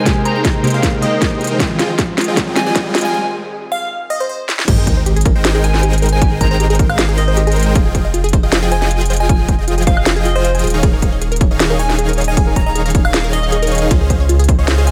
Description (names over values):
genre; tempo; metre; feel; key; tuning
future bass; 156 BPM; 4/4; half-time; Ab major; A4 = 440 Hz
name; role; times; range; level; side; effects
glassy wavetable pluck; melody; 0.0-14.9 s; C5 to Bb5; -24 LUFS; equal; chorus, sidechain pumping, dub echo
glassy digital keys; accompaniment; 0.0-4.5 s; C3 to Bb4; -23 LUFS; equal; chorus, sidechain pumping
ethereal airy pad; sustained chords; 0.6-3.1 s; C3 to C5; -33 LUFS; equal; none
supersaw chords; riff; 0.0-14.9 s; Eb3 to G5; -23 LUFS; equal; sidechain pumping, low-pass filter
riser and sub drop; sound effects; 1.5-6.2 s; none; -27 LUFS; equal; none
electronic kick drum; drums; 0.1-14.6 s; none; -17 LUFS; equal; none
trap drum kit; drums; 0.1-14.9 s; crash cymbal, hi-hat, ride cymbal, snare drum, woodblock; -22 LUFS; equal; none
unison pluck; arpeggios; 4.7-14.9 s; F4 to Bb5; -26 LUFS; equal; sidechain pumping, tape echo
saturated sub bass; bass; 4.7-14.9 s; Eb1 to Db2; -18 LUFS; equal; sidechain pumping
room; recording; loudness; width
light reverb, digital ambience; high-pass filter; -15 LUFS; mono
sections
0.0-4.7 A section; 4.7-14.9 B section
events
build-up 0.0-4.7; drum fill 0.0-3.1, 4.5; filter sweep 0.0-4.7; break 3.1-4.7; drop 4.7-14.9; impact 4.7-6.2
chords
0.0 Abmaj9; 1.6 Fm7; 4.5 N.C.; 4.7 Abmaj9; 7.8 Fm7; 10.6 Eb7sus4; 13.9 Dbmaj7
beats
| 0.06 0.45 0.83 1.22 | 1.60 1.99 2.37 2.75 | 3.14 3.52 3.91 4.29 | 4.68 5.06 5.45 5.83 | 6.22 6.60 6.99 7.37 | 7.75 8.14 8.52 8.91 | 9.29 9.68 10.06 10.45 | 10.83 11.22 11.60 11.98 | 12.37 12.75 13.14 13.52 | 13.91 14.29 14.68